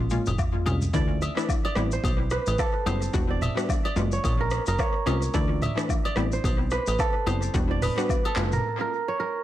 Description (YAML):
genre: afrobeats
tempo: 109 BPM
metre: 4/4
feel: swing 58% on 16ths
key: D mixolydian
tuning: A4 = 440 Hz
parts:
  - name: plucky analog bass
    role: bass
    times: 0.0-8.6 s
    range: E1 to D2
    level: -27 LUFS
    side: equal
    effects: none
  - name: afro-pop drum kit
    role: drums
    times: 0.0-8.6 s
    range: handclaps, hi-hat, kick drum, rim click, shaker, toms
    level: -27 LUFS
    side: equal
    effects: overdrive, vintage 12-bit sampler grit, analog delay
  - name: hollow square pluck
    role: accompaniment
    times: 0.1-8.5 s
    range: E3 to F#4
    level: -31 LUFS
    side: left 2 dB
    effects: chorus, analog delay
  - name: agogo bells and woodblock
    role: percussion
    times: 0.3-8.4 s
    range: none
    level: -35 LUFS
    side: left 6 dB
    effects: none
  - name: kora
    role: riff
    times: 0.9-9.4 s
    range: A4 to E5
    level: -29 LUFS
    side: right 4 dB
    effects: analog delay
room: digital ambience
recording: echo-heavy mix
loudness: -23 LUFS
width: side -13 dB against mid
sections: 0.9-9.4 A section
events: drum fill 0.0-0.9; break 8.6-9.4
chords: 0.0 F#maj7; 0.9 Dsus2; 1.8 Am7; 3.1 Em7; 4.0 F#maj7; 5.3 Dsus2; 6.2 Am7; 7.5 Em7; 8.4 F#maj7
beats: 0.39 | 0.94 1.49 2.04 2.59 | 3.14 3.69 4.24 4.79 | 5.34 5.89 6.44 6.99 | 7.54 8.09 8.64 9.19